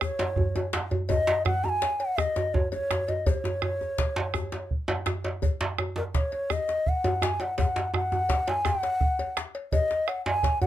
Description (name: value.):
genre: west african traditional, West African drum ensemble.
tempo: 111 BPM (dotted quarters).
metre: 12/8.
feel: straight.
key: unclear.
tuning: A4 = 440 Hz.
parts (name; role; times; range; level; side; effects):
hollow bass bansuri; melody; 0.0-10.7 s; A#4 to A#5; -27 LUFS; left 1 dB; none.
bombo; percussion; 0.0-10.6 s; none; -28 LUFS; right 2 dB; none.
djembe; percussion; 0.0-10.7 s; none; -33 LUFS; left 5 dB; none.
cowbell; percussion; 0.2-10.7 s; none; -38 LUFS; left 4 dB; none.
djembe; percussion; 0.2-10.7 s; none; -29 LUFS; right 2 dB; none.
room: light reverb.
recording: close, detailed microphones.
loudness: -25 LUFS.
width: side -12 dB against mid.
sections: 0.0-10.7 A section.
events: none.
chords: none.